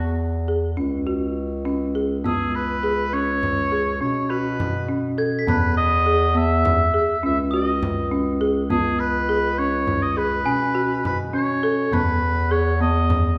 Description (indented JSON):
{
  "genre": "contemporary instrumental, chamber music in an uneven meter",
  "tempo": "205 BPM (eighths)",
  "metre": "11/8",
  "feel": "straight",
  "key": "C# minor",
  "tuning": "A4 = 440 Hz",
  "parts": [
    { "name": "clear oboe", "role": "melody", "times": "0.0-13.4 s", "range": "F#4 to E5", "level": "-25 LUFS", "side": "equal", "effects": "none" },
    { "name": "folk marimba with medium hard mallets", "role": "arpeggios", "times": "0.0-13.1 s", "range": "B3 to A4", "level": "-26 LUFS", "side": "equal", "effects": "none" },
    { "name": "warm bass clarinet", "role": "bass", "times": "0.0-13.4 s", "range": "C#2 to B2", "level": "-27 LUFS", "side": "equal", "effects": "none" },
    { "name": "frame drum", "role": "percussion", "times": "2.3-13.4 s", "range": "none", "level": "-30 LUFS", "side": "equal", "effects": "none" },
    { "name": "glockenspiel with hard plastic mallets", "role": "texture", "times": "2.3-12.2 s", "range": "G#5 to B6", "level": "-36 LUFS", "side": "equal", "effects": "none" }
  ],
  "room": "wet recital hall reverb, RT60 1.6 s",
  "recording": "none",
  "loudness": "-21 LUFS",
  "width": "mono",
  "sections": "0.0-13.4 A section",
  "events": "none",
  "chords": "0.0 Eadd9; 0.8 C#sus4; 2.2 C#m7; 4.0 Bsus2; 5.5 Emaj7; 7.2 C#sus24; 8.7 C#sus2; 10.5 Bsus2; 11.9 Emaj7"
}